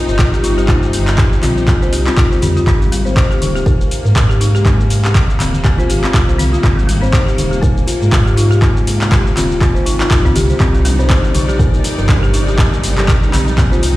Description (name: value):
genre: afro house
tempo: 121 BPM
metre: 4/4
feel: swing 57% on 16ths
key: unclear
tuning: A4 = 440 Hz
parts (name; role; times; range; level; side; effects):
- kalimba; melody; 0.0-14.0 s; F4 to C5; -21 LUFS; left 1 dB; tape echo
- rich symphonic string section; sustained chords; 0.0-14.0 s; C3 to D5; -23 LUFS; left 1 dB; sidechain pumping
- dark detuned saw bass; bass; 0.1-14.0 s; Eb1 to Ab2; -16 LUFS; equal; sidechain pumping
- afro-pop drum kit; drums; 0.1-13.9 s; handclaps, hi-hat, shaker, toms; -20 LUFS; equal; overdrive
- electronic kick drum; drums; 0.2-13.7 s; none; -13 LUFS; equal; overdrive
- folk marimba with medium hard mallets; arpeggios; 0.3-13.9 s; G3 to C5; -22 LUFS; left 1 dB; sidechain pumping, tape echo
- congas; percussion; 10.7-13.9 s; none; -22 LUFS; right 2 dB; none
room: small room reverb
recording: played on a big sound system in a bare room, large studio reverb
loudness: -11 LUFS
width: side -17 dB against mid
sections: 0.0-14.0 A section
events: none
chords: 0.0 Cm7; 2.7 Abadd9; 10.6 Cm7